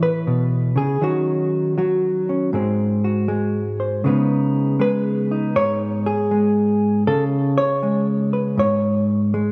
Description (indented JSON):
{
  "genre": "solo jazz",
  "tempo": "79 BPM",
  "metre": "4/4",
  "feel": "swing 66% on 8ths",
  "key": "C# minor",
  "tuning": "A4 = 440 Hz",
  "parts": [
    { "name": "hollow-body jazz guitar", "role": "solo", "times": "0.0-9.5 s", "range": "G#2 to C#5", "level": "-20 LUFS", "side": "equal", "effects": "none" }
  ],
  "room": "light reverb",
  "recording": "rough home demo mix, small room ambience",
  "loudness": "-20 LUFS",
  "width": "mono",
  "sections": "0.0-9.5 A section",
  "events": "none",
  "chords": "0.0 Amaj9; 1.0 D#m7; 2.5 G#7; 4.0 C#sus2",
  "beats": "0.25 | 1.01 1.76 2.52 3.28 | 4.03 4.79 5.54 6.30 | 7.06 7.81 8.57 9.32"
}